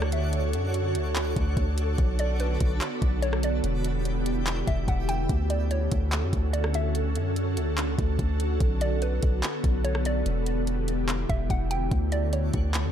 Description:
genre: hip hop, atmospheric cloud-rap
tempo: 145 BPM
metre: 4/4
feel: half-time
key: D major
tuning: A4 = 440 Hz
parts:
  - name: hollow square pluck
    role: melody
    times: 0.0-12.9 s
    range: B4 to G5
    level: -34 LUFS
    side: right 1 dB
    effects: chorus, tape echo
  - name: ethereal airy pad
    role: sustained chords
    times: 0.0-12.9 s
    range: D3 to C#5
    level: -30 LUFS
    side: right 1 dB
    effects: ensemble chorus, built-in reverb, sidechain pumping
  - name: long sustained 808-style bass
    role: bass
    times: 0.0-12.9 s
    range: E1 to F#2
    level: -27 LUFS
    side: equal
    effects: none
  - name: smooth R&B drum kit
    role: drums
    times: 0.0-12.8 s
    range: handclaps, hi-hat, kick drum, rim click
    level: -28 LUFS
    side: equal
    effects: none
  - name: twinkling granular texture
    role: texture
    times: 0.0-5.3, 12.3-12.9 s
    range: D4 to A5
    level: -40 LUFS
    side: left 1 dB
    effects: built-in reverb
room: little or no reverb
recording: none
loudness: -24 LUFS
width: side -9 dB against mid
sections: 0.0-5.3 A section; 5.3-12.9 A section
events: none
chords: 0.0 Dmaj7; 2.0 Bm7; 3.6 Em7; 5.3 Dmaj7; 8.6 Bm7; 10.3 Em7; 11.9 Dmaj7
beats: | 0.33 0.74 1.16 1.57 | 1.98 2.40 2.81 3.23 | 3.64 4.05 4.47 4.88 | 5.29 5.71 6.12 6.54 | 6.95 7.36 7.78 8.19 | 8.61 9.02 9.43 9.85 | 10.26 10.67 11.09 11.50 | 11.91 12.33 12.74

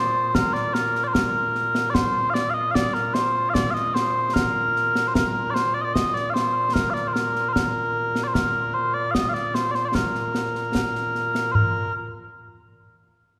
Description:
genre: scottish traditional, Scottish pipe music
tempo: 75 BPM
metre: 2/4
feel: straight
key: Bb major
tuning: A4 = 439 Hz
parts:
  - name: mellow small bagpipes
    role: melody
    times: 0.0-11.9 s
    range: Bb2 to F5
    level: -24 LUFS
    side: equal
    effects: none
  - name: concert snare drum, concert bass drum and concert toms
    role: drums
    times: 0.3-11.7 s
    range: none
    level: -28 LUFS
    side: equal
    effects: none
room: wet concert hall reverb, RT60 2.2 s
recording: recorded in a church or concert hall, lossy compression artefacts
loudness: -23 LUFS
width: mono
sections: 0.0-11.5 A section; 11.5-13.1 B section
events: none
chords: none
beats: | 0.35 1.15 | 1.95 2.75 | 3.55 4.35 | 5.15 5.95 | 6.75 7.55 | 8.35 9.15 | 9.95 10.75 | 11.55

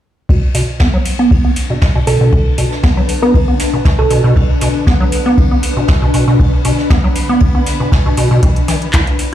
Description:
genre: acid house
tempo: 118 BPM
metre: 4/4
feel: swing 53% on 16ths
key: B minor pentatonic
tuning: A4 = 440 Hz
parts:
  - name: acid bass, square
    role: riff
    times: 0.3-9.0 s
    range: B2 to E4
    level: -15 LUFS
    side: right 1 dB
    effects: overdrive, analog chorus, sidechain pumping, digital delay
  - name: electronic kick drum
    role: drums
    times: 0.3-9.0 s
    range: none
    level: -13 LUFS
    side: equal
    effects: none
  - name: jazz brush drum kit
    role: drums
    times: 0.3-9.3 s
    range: ride cymbal, snare drum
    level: -26 LUFS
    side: left 2 dB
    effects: sidechain pumping on cymbals, high-pass filter on cymbals, high-pass filter on snare, high-pass filter on room
  - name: granular cloud pad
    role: texture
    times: 1.5-9.3 s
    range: D4 to B5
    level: -20 LUFS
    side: left 2 dB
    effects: built-in reverb, sidechain pumping
  - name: booming analog drum machine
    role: drums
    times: 0.5-9.3 s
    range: handclaps, hi-hat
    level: -22 LUFS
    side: equal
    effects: none
  - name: thumb-piano-like synth pluck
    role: melody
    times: 2.1-4.5 s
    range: A4 to B4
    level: -20 LUFS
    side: right 2 dB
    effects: chorus, ping-pong delay
room: light reverb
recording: played on a big sound system in a bare room, large studio reverb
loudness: -10 LUFS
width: side -12 dB against mid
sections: 0.3-9.3 A section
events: filter sweep on acid bass 0.3-9.3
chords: 0.3 Bm7; 8.4 E7(no3)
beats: | 0.29 0.80 1.31 1.82 | 2.33 2.83 3.34 3.85 | 4.36 4.87 5.38 5.89 | 6.39 6.90 7.41 7.92 | 8.43 8.94

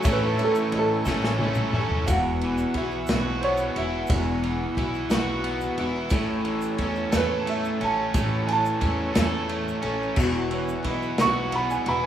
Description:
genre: folk rock and heartland rock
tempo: 59 BPM (dotted quarters)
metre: 6/8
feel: straight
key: unclear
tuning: A4 = 440 Hz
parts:
  - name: warm upright piano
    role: second line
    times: 0.0-12.1 s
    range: A4 to C#6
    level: -27 LUFS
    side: right 3 dB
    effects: none
  - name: bright concert grand piano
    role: accompaniment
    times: 0.0-2.1, 10.2-12.1 s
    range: E4 to E5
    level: -36 LUFS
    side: right 2 dB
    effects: none
  - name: picked steel-string acoustic guitar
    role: accompaniment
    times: 0.0-12.1 s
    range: E2 to A4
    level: -31 LUFS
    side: left 4 dB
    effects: none
  - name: musette accordion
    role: sustained chords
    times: 0.0-12.1 s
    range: E4 to E6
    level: -38 LUFS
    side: right 2 dB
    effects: none
  - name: crunchy overdriven guitar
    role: riff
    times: 0.0-12.1 s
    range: E2 to A4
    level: -27 LUFS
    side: right 1 dB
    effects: none
  - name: upright bass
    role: bass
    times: 0.0-12.1 s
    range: E1 to E2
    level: -30 LUFS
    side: equal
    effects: none
  - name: unplugged drum kit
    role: drums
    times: 0.0-12.0 s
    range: crash cymbal, kick drum, ride cymbal, snare drum, toms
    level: -28 LUFS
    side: equal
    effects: none
  - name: egg shaker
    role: percussion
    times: 0.0-11.9 s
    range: none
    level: -48 LUFS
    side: right 5 dB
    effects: none
room: moderate studio reverb, RT60 0.6 s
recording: rough home demo mix, small room ambience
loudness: -22 LUFS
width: side -10 dB against mid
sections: 0.0-2.1 A section; 2.1-12.1 B section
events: drum fill 1.1-2.1; upright piano solo 2.1-12.1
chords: 0.1 A; 2.1 Esus2; 6.1 A; 10.2 Esus2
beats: | 0.05 1.06 | 2.08 3.09 | 4.10 5.11 | 6.13 7.14 | 8.15 9.17 | 10.18 11.19

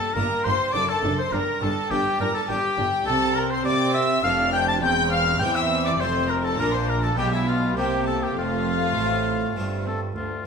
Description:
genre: classical, baroque-style concerto movement with solo episodes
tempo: 102 BPM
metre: 3/4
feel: straight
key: F major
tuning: A4 = 439 Hz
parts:
  - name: clear oboe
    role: melody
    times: 0.0-10.4 s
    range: E4 to A5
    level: -26 LUFS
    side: left 2 dB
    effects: none
  - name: warm chamber violin section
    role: melody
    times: 0.0-10.5 s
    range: A3 to A6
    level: -28 LUFS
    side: left 3 dB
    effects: none
  - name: warm chamber violin section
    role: second line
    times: 0.0-10.4 s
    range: D4 to A5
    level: -28 LUFS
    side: left 1 dB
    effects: none
  - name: harpsichord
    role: accompaniment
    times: 0.0-10.4 s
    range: D2 to A4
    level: -32 LUFS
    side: equal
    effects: none
  - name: dark chamber viola section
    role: accompaniment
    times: 0.2-10.4 s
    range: A3 to D4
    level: -30 LUFS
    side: left 1 dB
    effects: none
  - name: warm chamber cello section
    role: bass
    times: 0.2-10.2 s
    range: D2 to C4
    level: -29 LUFS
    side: right 3 dB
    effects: none
  - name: warm chamber double bass section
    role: bass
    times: 0.2-10.2 s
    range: E1 to C3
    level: -30 LUFS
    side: right 2 dB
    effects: none
room: moderate recital hall reverb, RT60 1.4 s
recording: minimal, uncompressed stereo recording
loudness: -20 LUFS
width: side -6 dB against mid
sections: 0.0-10.2 A section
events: none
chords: 0.0 Gm; 0.7 D/F#; 1.3 G5; 3.1 C5; 4.2 F; 4.8 C/E; 6.0 F; 6.6 Bb; 7.2 Bdim7; 7.8 C7; 8.4 F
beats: 0.17 0.75 | 1.33 1.91 2.49 | 3.07 3.65 4.24 | 4.83 5.41 6.00 | 6.59 7.18 7.77 | 8.37 8.97 9.56 | 10.16

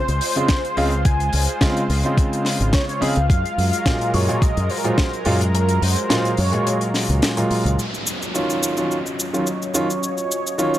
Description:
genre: nu-disco, nu disco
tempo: 107 BPM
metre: 4/4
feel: swing 54% on 16ths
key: Eb dorian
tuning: A4 = 441 Hz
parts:
  - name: wide unison lead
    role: melody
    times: 0.0-10.8 s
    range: Bb4 to Ab5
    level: -25 LUFS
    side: equal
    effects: analog chorus, tape echo
  - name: lush unison pad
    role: sustained chords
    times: 0.0-10.8 s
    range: Gb3 to Eb5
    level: -28 LUFS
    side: equal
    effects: chorus, sidechain pumping
  - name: fingered electric bass with an envelope filter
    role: bass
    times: 0.1-7.8 s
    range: Ab1 to Gb2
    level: -20 LUFS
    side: equal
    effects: none
  - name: tight funk drum kit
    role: drums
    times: 0.1-10.8 s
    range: cabasa, hi-hat, snare drum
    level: -24 LUFS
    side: left 1 dB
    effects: none
  - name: clear concert grand piano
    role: accompaniment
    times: 0.4-10.8 s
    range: Bb2 to Ab4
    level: -22 LUFS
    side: right 1 dB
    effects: vintage 12-bit sampler grit
  - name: electronic kick drum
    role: drums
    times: 0.5-5.1 s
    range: none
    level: -18 LUFS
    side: equal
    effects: overdrive
  - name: downlifter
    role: sound effects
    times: 7.8-10.8 s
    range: none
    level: -30 LUFS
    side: equal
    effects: none
room: studio ambience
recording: dry, gritty hardware recording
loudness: -17 LUFS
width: side -13 dB against mid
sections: 0.0-7.8 A section; 7.8-10.8 B section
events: kick drops out 5.5-7.8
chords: 0.0 Dbmaj7; 3.3 Gbmaj9; 7.8 Ebm9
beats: 0.49 | 1.05 1.61 2.17 2.74 | 3.30 3.86 4.42 4.98 | 5.54 6.10 6.66 7.22 | 7.78 8.34 8.90 9.46 | 10.03 10.59

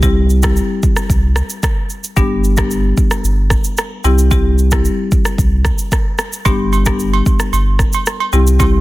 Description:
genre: afrobeats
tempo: 112 BPM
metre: 4/4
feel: straight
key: C major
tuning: A4 = 440 Hz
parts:
  - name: marimba with medium mallets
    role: accompaniment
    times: 0.0-8.8 s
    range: G3 to G4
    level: -19 LUFS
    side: left 3 dB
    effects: none
  - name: warm sub bass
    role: bass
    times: 0.0-8.8 s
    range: G1 to C2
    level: -14 LUFS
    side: equal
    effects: none
  - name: afro-pop drum kit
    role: drums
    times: 0.0-8.7 s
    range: kick drum, rim click, shaker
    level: -16 LUFS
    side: equal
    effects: soft clipping on snare
  - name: agogo bells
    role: percussion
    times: 6.5-8.7 s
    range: none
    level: -21 LUFS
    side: right 7 dB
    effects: none
room: little or no reverb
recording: dense, heavily limited modern master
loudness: -12 LUFS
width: side -18 dB against mid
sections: 0.0-8.8 A section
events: none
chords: 0.0 C; 2.2 G; 4.0 C; 6.5 G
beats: | 0.03 0.56 1.10 1.63 | 2.17 2.71 3.24 3.78 | 4.31 4.85 5.38 5.92 | 6.46 6.99 7.53 8.06 | 8.60

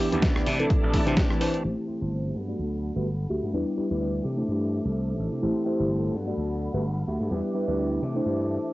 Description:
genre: filtered disco house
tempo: 127 BPM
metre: 4/4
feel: swing 56% on 16ths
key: A dorian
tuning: A4 = 441 Hz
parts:
  - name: tine electric piano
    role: accompaniment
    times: 0.0-8.7 s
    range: E3 to E5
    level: -28 LUFS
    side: equal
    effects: phaser, sidechain pumping, low-pass filter, cassette tape
  - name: muted chamber violin section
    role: sustained chords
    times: 0.0-8.7 s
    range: E4 to D6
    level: -37 LUFS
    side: equal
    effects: sidechain pumping, low-pass filter, cassette tape
  - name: clean electric guitar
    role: riff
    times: 0.0-8.7 s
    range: E3 to A4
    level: -35 LUFS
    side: left 2 dB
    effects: sidechain pumping, low-pass filter, cassette tape
  - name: gritty slap bass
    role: bass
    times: 0.1-8.6 s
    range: G1 to C3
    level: -29 LUFS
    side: equal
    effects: overdrive, sidechain pumping, low-pass filter
  - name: dusty soul sampler-style drum kit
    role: drums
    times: 0.1-1.6 s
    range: hi-hat, rim click, snare drum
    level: -29 LUFS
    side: equal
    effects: sidechain pumping on hats, cassette tape
  - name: electronic kick drum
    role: drums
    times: 0.2-1.3 s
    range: none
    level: -24 LUFS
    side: equal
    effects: cassette tape
room: light reverb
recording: home recording on cassette, nothing above 7.8 kHz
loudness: -24 LUFS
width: side -18 dB against mid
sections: 0.0-1.6 A section; 1.6-8.7 B section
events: filter sweep 1.6-8.7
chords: 0.5 C69; 1.6 Am7; 2.4 Gmaj9; 3.5 Em7; 4.2 C69; 5.4 Am7; 6.1 Gmaj9; 7.3 Em7; 8.0 C69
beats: 0.23 0.70 1.17 | 1.65 2.12 2.59 3.06 | 3.54 4.01 4.48 4.95 | 5.43 5.90 6.37 6.84 | 7.32 7.79 8.26

